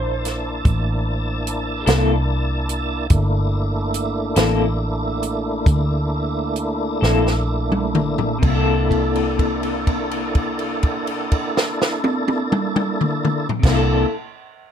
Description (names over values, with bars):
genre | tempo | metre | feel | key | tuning
slow blues | 42-49 BPM (dotted quarters) | 12/8 | straight | C mixolydian | A4 = 440 Hz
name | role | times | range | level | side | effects
lightly driven lead guitar | melody | 0.0-1.9 s | C5 | -32 LUFS | right 4 dB | plate reverb, digital delay
tonewheel organ | sustained chords | 0.0-14.1 s | A3 to A5 | -24 LUFS | right 1 dB | slow rotary speaker, overdrive, chorus vibrato
vintage muted fingered electric bass | bass | 0.0-14.0 s | G1 to D2 | -22 LUFS | equal | none
compact cocktail drum kit | drums | 0.2-13.9 s | crash cymbal, hi-hat, kick drum, snare drum, toms | -20 LUFS | equal | none
electric guitar through a small old amp | accompaniment | 1.9-14.1 s | C3 to A4 | -22 LUFS | left 4 dB | tremolo
room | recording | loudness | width
light reverb | dark, warm production | -18 LUFS | side -8 dB against mid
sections
0.0-8.4 A section; 8.4-14.2 B section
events
slowing down 1.5-8.4; drum fill 7.0-8.4; held note 8.4-13.6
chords
0.0 C13